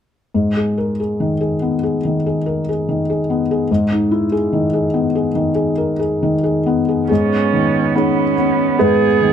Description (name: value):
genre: neoclassical piano and strings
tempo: 71 BPM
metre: 4/4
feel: rubato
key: G# minor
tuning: A4 = 442 Hz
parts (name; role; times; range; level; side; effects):
- felt-muted upright piano; accompaniment; 0.3-9.3 s; G#2 to B4; -15 LUFS; left 2 dB; none
- muted cello; second line; 7.1-9.3 s; B3 to C#4; -19 LUFS; right 8 dB; none
- muted viola; accompaniment; 7.1-9.3 s; B3 to G#4; -18 LUFS; right 7 dB; none
room: light reverb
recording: dark, warm production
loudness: -15 LUFS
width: side -8 dB against mid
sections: 0.3-7.1 A section; 7.1-9.3 B section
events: none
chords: 0.3 G#m